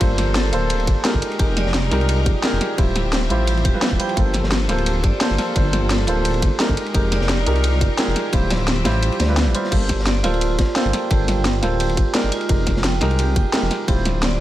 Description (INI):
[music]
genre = liquid drum and bass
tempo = 173 BPM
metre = 4/4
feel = straight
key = unclear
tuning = A4 = 440 Hz
[part]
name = warm grand piano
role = accompaniment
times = 0.0-14.4 s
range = G3 to G5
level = -24 LUFS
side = right 1 dB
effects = tape echo
[part]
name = bright symphonic string section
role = sustained chords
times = 0.0-9.7 s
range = F3 to E5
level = -30 LUFS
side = left 2 dB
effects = none
[part]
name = vibraphone with hard mallets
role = arpeggios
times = 0.0-14.4 s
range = F4 to G5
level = -27 LUFS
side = right 5 dB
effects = digital delay
[part]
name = dark detuned saw bass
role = bass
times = 0.0-14.4 s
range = D1 to D2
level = -21 LUFS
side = equal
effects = none
[part]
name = crunchy breakbeat drum kit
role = drums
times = 0.0-14.3 s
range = ride cymbal, snare drum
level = -30 LUFS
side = equal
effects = high-pass filter on cymbals, studio reverb, high-pass filter on snare, high-pass filter on room
[part]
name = drum and bass drum kit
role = drums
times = 0.0-14.3 s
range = crash cymbal, hi-hat, snare drum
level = -23 LUFS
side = equal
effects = studio reverb
[part]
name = electronic kick drum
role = drums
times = 0.0-14.0 s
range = none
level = -19 LUFS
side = equal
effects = studio reverb
[sound]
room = light reverb, small room ambience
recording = none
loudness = -16 LUFS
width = side -14 dB against mid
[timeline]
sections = 0.0-9.7 A section; 9.7-14.4 A section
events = drop 0.0-9.7, 9.7-14.4; kick drops out 9.0-9.7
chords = 0.0 Gm11; 1.2 Fm11; 2.8 Dm11; 4.2 Gm11; 6.8 Fm11; 8.3 Dm11; 9.7 Gm11; 12.3 Fm11; 13.9 Dm11